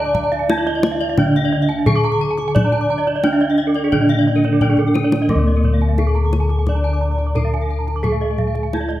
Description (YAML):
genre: Balinese gamelan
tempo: 87 BPM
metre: 4/4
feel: straight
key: D pelog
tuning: A4 = 438 Hz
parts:
  - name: gamelan-type bronze metallophone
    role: melody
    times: 0.0-9.0 s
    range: Bb3-40c to D5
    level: -19 LUFS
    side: right 1 dB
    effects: none
  - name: breathy mellow bansuri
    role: second line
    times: 0.0-1.6 s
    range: D5 to F5-46c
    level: -34 LUFS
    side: left 2 dB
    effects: none
  - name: gamelan-type bronze metallophone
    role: accompaniment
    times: 0.0-9.0 s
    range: D3 to D4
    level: -28 LUFS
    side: right 2 dB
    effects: none
  - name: gamelan-type bronze metallophone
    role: arpeggios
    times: 0.0-8.8 s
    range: A4-45c to D6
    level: -27 LUFS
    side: left 5 dB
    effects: none
  - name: gamelan-type bossed gongs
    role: bass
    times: 0.0-9.0 s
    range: D2 to D5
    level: -20 LUFS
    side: left 1 dB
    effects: none
  - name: gamelan-type bronze metallophone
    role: arpeggios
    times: 0.1-9.0 s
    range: A4-45c to D6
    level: -26 LUFS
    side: right 7 dB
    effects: none
  - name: kendang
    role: percussion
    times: 0.1-9.0 s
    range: none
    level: -22 LUFS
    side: left 1 dB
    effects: none
room: wet recital hall reverb, RT60 1.5 s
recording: none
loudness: -15 LUFS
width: side -14 dB against mid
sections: 0.0-5.3 A section; 5.3-9.0 A section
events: drum fill 4.8-5.3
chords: none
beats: 0.48 1.17 1.86 | 2.55 3.23 3.92 4.61 | 5.29 5.98 6.67 7.35 | 8.04 8.73